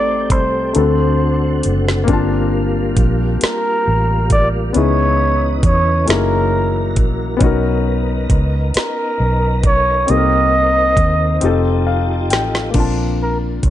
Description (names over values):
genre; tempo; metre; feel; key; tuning
slow six-eight R&B; 45 BPM (dotted quarters); 6/8; straight; unclear; A4 = 440 Hz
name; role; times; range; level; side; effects
breathy flugelhorn; melody; 0.0-13.7 s; Bb4 to Eb5; -18 LUFS; right 1 dB; slapback echo
warm concert grand piano; accompaniment; 0.0-13.7 s; A3 to A5; -20 LUFS; left 6 dB; none
tonewheel organ; sustained chords; 0.0-12.7 s; C3 to Eb5; -24 LUFS; right 1 dB; chorus vibrato, slow rotary speaker
vintage muted fingered electric bass; bass; 0.0-13.7 s; F1 to Fb2; -18 LUFS; equal; none
smooth R&B drum kit; drums; 0.3-13.7 s; crash cymbal, hi-hat, kick drum, snare drum; -17 LUFS; equal; none
room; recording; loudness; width
little or no reverb; dark, warm production, nothing above 10.6 kHz; -13 LUFS; side -12 dB against mid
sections
0.0-12.7 A section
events
drum fill 0.7-2.1, 11.4-12.7; grand piano fill 11.4-12.7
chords
0.0 Am7b5; 0.7 D7; 2.1 Gm11; 4.7 Dbm9; 6.1 Gb13; 7.4 Bmaj9; 10.1 Cm7; 11.4 F9; 12.7 Bbmaj7